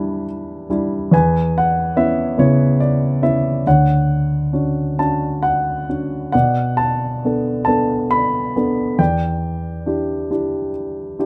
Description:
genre	classical, lyrical solo piano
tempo	46 BPM (dotted quarters)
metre	6/8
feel	uneven beats, rubato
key	unclear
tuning	A4 = 440 Hz
part	dark grand piano	solo	0.0-11.3 s	D2 to B5	-18 LUFS	equal	none
room	light reverb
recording	close, detailed microphones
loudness	-18 LUFS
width	mono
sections	0.0-11.3 A section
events	none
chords	0.0 Em7; 1.1 C#m7/E; 3.7 Dmaj7; 6.3 Bm7; 9.0 Em7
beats	| 1.13 2.38 | 3.66 4.99 | 6.34 7.68 | 9.00 10.30

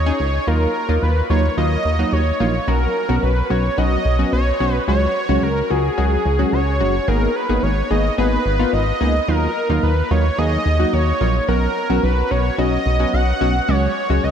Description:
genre	synth-pop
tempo	109 BPM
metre	4/4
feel	straight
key	Eb minor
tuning	A4 = 442 Hz
part	wide unison lead	melody	0.0-14.3 s	Ab4 to F#5	-21 LUFS	right 1 dB	shimmer reverb, ping-pong delay
part	chorused synth bass	bass	0.0-14.3 s	Gb1 to Eb2	-19 LUFS	equal	none
part	funky polysynth comp	accompaniment	0.1-14.3 s	Gb3 to Ab4	-21 LUFS	equal	chorus, shimmer reverb
room	moderate lush hall reverb, RT60 2.8 s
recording	dreamy mix soaked in reverb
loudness	-16 LUFS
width	side -8 dB against mid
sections	0.5-14.3 A section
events	none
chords	0.5 Ebmadd9; 2.7 Bsus2; 4.9 Dbsus4; 7.1 Abmadd9; 9.3 Ebmadd9; 11.5 Bsus2; 13.7 Dbsus4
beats	| 0.47 1.02 1.58 2.13 | 2.68 3.23 3.78 4.33 | 4.88 5.43 5.98 6.53 | 7.08 7.63 8.18 8.73 | 9.28 9.83 10.38 10.93 | 11.48 12.03 12.59 13.13 | 13.69 14.24

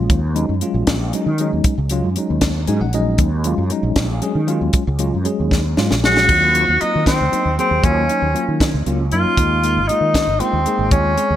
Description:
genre	electric jazz fusion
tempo	78 BPM (dotted quarters)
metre	6/8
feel	straight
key	Eb dorian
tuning	A4 = 439 Hz
part	barky tine electric piano	accompaniment	0.0-11.4 s	Gb3 to Ab5	-22 LUFS	left 1 dB	fast stereo tremolo
part	fretless electric bass	bass	0.0-11.4 s	Ab1 to Eb3	-20 LUFS	equal	ensemble chorus
part	tight funk drum kit	drums	0.1-11.3 s	crash cymbal, hi-hat, kick drum, snare drum	-20 LUFS	equal	gated reverb
part	clear tenor saxophone	melody	6.1-11.4 s	C4 to Gb4	-16 LUFS	equal	none
room	light reverb, studio ambience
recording	bright 1980s-style digital production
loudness	-15 LUFS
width	side -11 dB against mid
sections	0.0-6.3 A section; 6.3-11.4 B section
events	tine electric piano fill 2.4-3.2; drum fill 5.5-6.3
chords	0.0 Ebm11; 6.3 Ab13/Eb; 7.8 Ebm9; 9.4 Ab69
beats	| 0.10 0.88 | 1.65 2.42 | 3.19 3.97 | 4.74 5.51 | 6.28 7.06 | 7.83 8.60 | 9.38 10.15 | 10.92

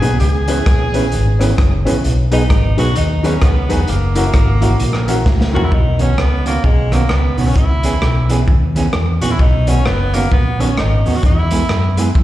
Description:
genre	ska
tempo	130 BPM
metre	4/4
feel	swing 61% on 8ths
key	B major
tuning	A4 = 440 Hz
part	clear tenor saxophone	melody	0.0-12.1 s	G#3 to G#4	-21 LUFS	right 1 dB	slapback echo
part	hollow-body jazz guitar	accompaniment	0.0-12.1 s	D#3 to G#4	-22 LUFS	right 5 dB	slapback echo
part	dark upright piano	stabs	0.0-5.6 s	B3 to B4	-22 LUFS	left 4 dB	slapback echo
part	hollow-body short-scale fingered electric bass	bass	0.0-12.2 s	E1 to F#2	-16 LUFS	equal	none
part	raw garage drum kit	drums	0.0-12.2 s	hi-hat, kick drum, rim click, snare drum, toms	-17 LUFS	equal	slapback echo
room	light reverb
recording	live gig heard through the venue's PA, recital hall reverb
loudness	-12 LUFS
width	side -14 dB against mid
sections	0.0-5.7 A section; 5.7-12.2 B section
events	drum fill 5.3-5.7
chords	0.2 C#m7; 2.0 B6; 3.9 F#7; 5.7 Badd9; 7.6 C#m7; 9.4 Badd9; 11.2 E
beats	| 0.20 0.66 1.12 1.58 | 2.04 2.50 2.96 3.42 | 3.88 4.34 4.80 5.26 | 5.72 6.18 6.64 7.10 | 7.56 8.02 8.48 8.94 | 9.40 9.86 10.31 10.78 | 11.23 11.69 12.15

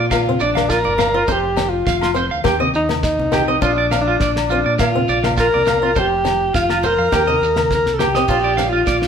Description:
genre	highlife guitar band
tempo	103 BPM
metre	4/4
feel	straight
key	Bb major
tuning	A4 = 440 Hz
part	warm alto saxophone	melody	0.0-9.1 s	D4 to Bb4	-18 LUFS	left 1 dB	none
part	electric guitar at the edge of break-up	arpeggios	0.0-9.0 s	F4 to F5	-20 LUFS	right 4 dB	spring reverb
part	fingered electric bass	bass	0.0-9.1 s	F1 to Bb2	-24 LUFS	equal	none
part	fingerpicked swing-style acoustic guitar	accompaniment	0.1-8.7 s	F3 to D4	-24 LUFS	left 5 dB	none
part	damped 70s drum kit	drums	0.1-9.1 s	crash cymbal, kick drum, snare drum	-24 LUFS	equal	none
part	agogo bells	percussion	0.1-8.2 s	none	-29 LUFS	left 11 dB	none
part	congas	percussion	0.1-8.7 s	none	-31 LUFS	left 1 dB	none
part	shekere	percussion	0.1-9.0 s	none	-33 LUFS	right 3 dB	none
room	moderate large studio reverb, RT60 0.9 s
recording	band playing live in one room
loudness	-14 LUFS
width	side -7 dB against mid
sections	0.0-8.3 A section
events	drum fill 7.7-8.3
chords	0.0 Bb; 1.3 F5; 2.5 Eb; 3.6 Bb; 6.0 F5; 7.1 Eb; 8.3 Bb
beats	0.12 0.70 | 1.29 1.87 2.46 3.04 | 3.63 4.21 4.79 5.38 | 5.96 6.54 7.13 7.71 | 8.29 8.88

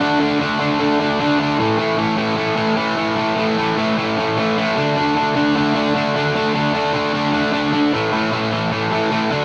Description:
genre	punk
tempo	151 BPM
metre	4/4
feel	straight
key	unclear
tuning	A4 = 440 Hz
part	distorted electric guitar	solo	0.0-9.4 s	A2 to D4	-18 LUFS	equal	distortion
room	moderate studio reverb, RT60 0.6 s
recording	rough rehearsal-room recording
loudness	-18 LUFS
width	mono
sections	0.0-7.9 A section; 7.9-9.4 B section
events	none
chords	0.0 D5; 1.6 A5; 4.8 D5; 7.9 A5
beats	| 0.00 0.40 0.80 1.19 | 1.59 1.99 2.38 2.78 | 3.18 3.57 3.97 4.37 | 4.76 5.16 5.55 5.95 | 6.35 6.74 7.14 7.54 | 7.93 8.33 8.73 9.12

